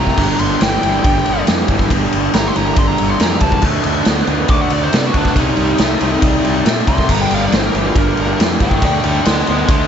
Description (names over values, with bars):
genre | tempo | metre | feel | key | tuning
blues rock power trio and southern rock | 139 BPM | 4/4 | straight | G minor | A4 = 440 Hz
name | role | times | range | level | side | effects
bluesy overdriven lead guitar | melody | 0.0-9.9 s | D4 to D6 | -20 LUFS | equal | distortion
overdriven tonewheel organ | sustained chords | 0.0-9.9 s | G3 to Ab4 | -28 LUFS | right 3 dB | none
cranked stack guitar | riff | 0.0-9.9 s | G2 to B3 | -18 LUFS | equal | overdrive, slapback echo
fuzz fingered electric bass | bass | 0.0-9.8 s | G1 to C3 | -20 LUFS | equal | overdrive
raw garage drum kit | drums | 0.1-9.8 s | crash cymbal, kick drum, ride cymbal, snare drum | -16 LUFS | equal | none
room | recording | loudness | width
moderate concert hall reverb, RT60 2.3 s | big arena sound, nothing above 7.8 kHz | -12 LUFS | side -8 dB against mid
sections
0.0-9.9 A section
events
lead electric guitar solo 0.0-9.9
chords
0.2 Gm; 3.6 D7b9; 5.4 Cm; 7.1 Gm; 8.8 D7b9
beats
| 0.18 0.61 1.04 1.47 | 1.91 2.34 2.77 3.20 | 3.63 4.07 4.50 4.93 | 5.36 5.80 6.23 6.66 | 7.10 7.53 7.96 8.39 | 8.83 9.26 9.69